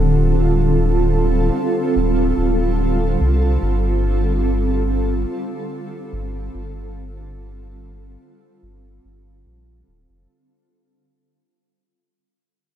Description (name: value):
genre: ambient dub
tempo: 72 BPM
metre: 4/4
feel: straight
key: unclear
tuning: A4 = 440 Hz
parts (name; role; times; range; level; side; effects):
- granular cloud pad; sustained chords; 0.0-10.3 s; D3 to A4; -20 LUFS; right 2 dB; built-in reverb
- warm sub bass; bass; 0.0-10.3 s; D1 to C2; -20 LUFS; equal; none
room: digital ambience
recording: none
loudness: -16 LUFS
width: side -10 dB against mid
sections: 0.0-10.3 A section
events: fade-out 0.0-10.3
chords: 0.0 Dm7; 3.6 G7sus2